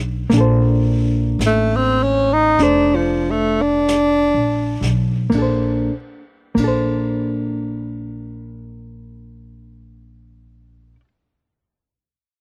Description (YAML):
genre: jazz ballad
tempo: 40-57 BPM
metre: 4/4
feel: swing 66% on 8ths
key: Bb major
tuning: A4 = 437 Hz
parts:
  - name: hollow-body jazz guitar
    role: accompaniment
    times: 0.0-11.1 s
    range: Bb3 to C5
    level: -23 LUFS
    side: equal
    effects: slapback echo
  - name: upright bass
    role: bass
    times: 0.0-10.9 s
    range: F1 to Cb2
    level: -23 LUFS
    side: equal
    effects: none
  - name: vintage brush drum kit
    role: drums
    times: 0.3-6.9 s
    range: brushed snare drum, hi-hat, kick drum, ride cymbal, snare drum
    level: -34 LUFS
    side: equal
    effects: none
  - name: warm tenor saxophone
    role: melody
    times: 1.5-5.0 s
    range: F3 to Eb4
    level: -18 LUFS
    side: equal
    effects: slapback echo
room: little or no reverb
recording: recorded outdoors, with no room sound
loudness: -18 LUFS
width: mono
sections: 0.0-5.3 A section; 5.3-11.3 B section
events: slowing down 0.0-5.3; tenor saxophone solo 0.0-5.3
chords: 0.0 Bbmaj9